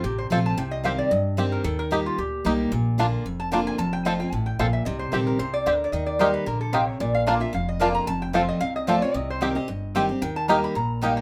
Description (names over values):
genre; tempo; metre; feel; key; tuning
bluegrass; 224 BPM; 4/4; swing 54% on 8ths; C dorian; A4 = 440 Hz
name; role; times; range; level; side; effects
lap resonator guitar; second line; 0.0-11.2 s; F4 to B5; -30 LUFS; equal; none
picked steel-string acoustic guitar; accompaniment; 0.0-11.2 s; F2 to G4; -29 LUFS; equal; none
upright bass; bass; 0.0-11.2 s; F1 to G2; -32 LUFS; equal; none
bluegrass banjo; melody; 0.3-11.1 s; C4 to Bb4; -27 LUFS; equal; none
mandolin; stabs; 6.2-11.1 s; Bb3 to Bb5; -29 LUFS; equal; none
room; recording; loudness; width
moderate studio reverb, RT60 0.5 s; none; -24 LUFS; mono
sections
0.0-11.2 A section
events
resonator guitar played with a steel bar solo 0.0-11.2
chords
0.0 F; 0.6 Cm; 1.7 Eb; 2.7 Bb; 3.8 F; 4.9 Cm; 7.0 Bb; 8.1 F; 9.1 Cm; 10.2 Eb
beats
0.05 0.31 | 0.58 0.85 1.12 1.38 | 1.65 1.92 2.19 2.45 | 2.72 2.99 3.25 3.52 | 3.79 4.06 4.33 4.59 | 4.86 5.13 5.40 5.66 | 5.93 6.20 6.47 6.73 | 7.00 7.27 7.54 7.81 | 8.07 8.34 8.61 8.88 | 9.15 9.41 9.68 9.95 | 10.22 10.49 10.76 11.03